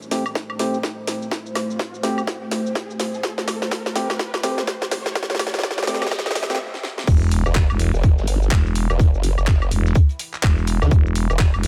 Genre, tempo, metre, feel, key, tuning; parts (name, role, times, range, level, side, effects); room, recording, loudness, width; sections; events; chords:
bass house; 125 BPM; 4/4; swing 60% on 16ths; E minor; A4 = 441 Hz
dark analog pad; sustained chords; 0.0-11.7 s; A3 to B5; -34 LUFS; equal; chorus, sidechain pumping
garage drum kit; drums; 0.0-11.7 s; crash cymbal, handclaps, hi-hat, shaker, snare drum, woodblock; -28 LUFS; equal; high-pass filter on snare, high-pass filter on hats, high-pass filter on perc, high-pass filter on cymbals
riser, noise sweep and sub drop; sound effects; 0.0-9.0 s; -32 LUFS; equal
percussive organ stab; stabs; 0.1-6.6 s; A3 to G4; -30 LUFS; equal; chorus, sidechain pumping, tape echo
electronic kick drum; drums; 0.4-11.5 s; -19 LUFS; equal; high-pass filter on kick
growling FM bass; bass; 7.1-11.7 s; E1; -22 LUFS; equal; tube saturation, sidechain pumping
loose indie drum kit; drums; 7.1-11.7 s; hi-hat, snare drum; -44 LUFS; equal
formant-sweep wobble bass; bass; 7.5-11.5 s; E1 to D2; -22 LUFS; equal; chorus, overdrive, sidechain pumping
digital ambience; high-pass filter; -21 LUFS; mono
0.0-7.1 A section; 7.1-11.7 B section
build-up 0.0-7.1; drum fill 0.0-6.6, 6.7-7.1; filter sweep on synth stab 0.0-7.1; filter sweep on analog synth pad 0.0-7.1; noise sweep 5.2-7.1; stop 6.6-7.1; drop 7.1-11.7; impact 7.1-9.0
0.0 Am7; 7.1 Em